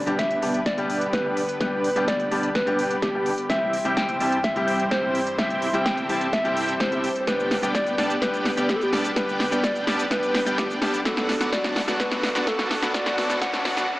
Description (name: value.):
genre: EDM, festival progressive house.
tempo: 127 BPM.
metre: 4/4.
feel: straight.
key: G major.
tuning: A4 = 441 Hz.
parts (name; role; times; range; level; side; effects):
soft struck synth lead; melody; 0.0-13.9 s; G4 to G5; -26 LUFS; equal; chorus, cassette tape, digital delay.
lush unison pad; sustained chords; 0.0-14.0 s; G2 to C5; -32 LUFS; equal; chorus, sidechain pumping.
clear grand piano; accompaniment; 0.1-13.8 s; F#3 to G4; -29 LUFS; left 1 dB; sidechain pumping.
dense compressed supersaw; riff; 0.1-13.9 s; B3 to A5; -27 LUFS; equal; sidechain pumping, low-pass filter.
big-room dance drum kit; drums; 0.1-13.9 s; hi-hat, shaker, snare drum; -28 LUFS; equal; overdrive.
electronic kick drum; drums; 0.2-13.5 s; none; -33 LUFS; equal; high-pass filter on kick, high-pass filter on room.
riser; sound effects; 9.7-13.9 s; none; -37 LUFS; right 1 dB; none.
room: moderate lush hall reverb, RT60 2.6 s.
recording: high-pass filter, small speaker sound.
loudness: -21 LUFS.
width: side -18 dB against mid.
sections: 0.0-14.0 A section.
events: build-up 0.0-14.0; drum fill 0.0-13.9; filter sweep on supersaw synth 0.0-14.0; filter sweep 0.0-14.0.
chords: 0.0 G; 3.5 C/G; 7.3 G; 11.1 D/G.